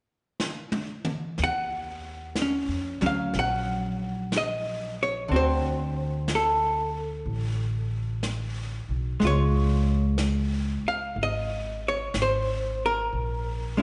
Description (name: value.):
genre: jazz ballad.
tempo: 61 BPM.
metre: 4/4.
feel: swing 66% on 8ths.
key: unclear.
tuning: A4 = 443 Hz.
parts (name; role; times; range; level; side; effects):
jazz brush drum kit; drums; 0.4-13.8 s; brushed snare drum, hi-hat, snare drum, toms; -38 LUFS; equal; none.
archtop guitar, miked and amplified; accompaniment; 1.4-13.8 s; D3 to Gb5; -29 LUFS; equal; none.
upright bass; bass; 1.4-13.8 s; Ab1 to F2; -32 LUFS; equal; none.
room: moderate concert hall reverb, RT60 2.3 s.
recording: recorded in a church or concert hall, nothing above 10.8 kHz.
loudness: -27 LUFS.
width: mono.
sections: 0.0-1.4 A section; 1.4-13.8 B section.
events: drum fill 0.4-1.4.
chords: 0.0 N.C.; 1.4 Ebm9; 5.3 D7; 9.2 Db; 13.1 N.C..